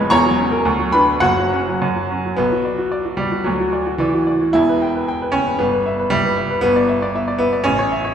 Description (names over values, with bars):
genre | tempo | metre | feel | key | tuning
classical, virtuoso piano study | 101-119 BPM | 2/4 | rubato | B minor | A4 = 440 Hz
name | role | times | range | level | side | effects
clear baby grand piano | solo | 0.0-8.1 s | E1 to C#6 | -15 LUFS | equal | none
room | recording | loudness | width
wet recital hall reverb, RT60 1.4 s | recorded in a church or concert hall | -15 LUFS | side -8 dB against mid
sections
0.0-2.4 A section; 2.4-8.1 B section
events
none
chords
0.1 F#7/E; 0.7 Bm/D; 1.2 F#5; 2.4 Bm; 3.5 Dadd9; 4.6 Em; 5.6 Em/G; 6.6 Em7/G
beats
| 0.12 0.66 | 1.23 1.82 | 2.39 2.93 | 3.46 4.00 | 4.55 5.08 | 5.61 6.12 | 6.64 7.14 | 7.65